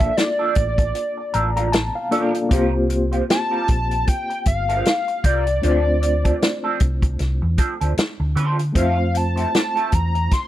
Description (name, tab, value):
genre	lush 1970s-style soul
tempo	77 BPM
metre	4/4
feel	swing 58% on 16ths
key	unclear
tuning	A4 = 440 Hz
part	hollow square lead	melody	0.0-10.5 s	D5 to C6	-22 LUFS	equal	chorus
part	reed electric piano	accompaniment	0.0-10.5 s	A3 to Bb5	-25 LUFS	left 2 dB	fast tremolo
part	electric guitar through a small old amp	riff	0.0-10.3 s	F3 to C5	-26 LUFS	right 5 dB	wah, analog chorus
part	hollow-body short-scale fingered electric bass	bass	0.0-10.3 s	G1 to D3	-21 LUFS	equal	none
part	vintage drum kit	drums	0.0-10.5 s	hi-hat, kick drum, snare drum	-20 LUFS	equal	none
room	small room ambience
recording	dry, close 1970s-style studio recording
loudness	-17 LUFS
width	side -13 dB against mid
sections	0.0-10.5 A section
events	reed electric piano fill 1.0-2.5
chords	0.0 Bbmaj7; 2.5 C7sus4; 5.6 Dm7; 8.8 Fmaj7